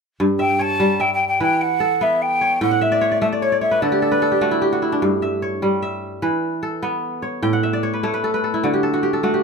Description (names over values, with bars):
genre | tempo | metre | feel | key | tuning
west african traditional, West African string and xylophone music | 100 BPM (dotted quarters) | 12/8 | straight | unclear | A4 = 439 Hz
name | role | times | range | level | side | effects
kora | arpeggios | 0.2-9.4 s | G2 to G5 | -19 LUFS | equal | none
breathy mellow jazz flute | melody | 0.4-4.8 s | C#5 to A5 | -18 LUFS | equal | none
room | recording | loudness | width
light reverb | close, detailed microphones | -17 LUFS | side -5 dB against mid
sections
0.2-9.4 A section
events
kora fill 2.6-5.0, 7.4-9.4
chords
0.2 A7/G; 1.4 Em; 2.6 A; 3.8 D5; 5.0 C#dim/G; 6.2 E5; 7.4 A; 8.6 D5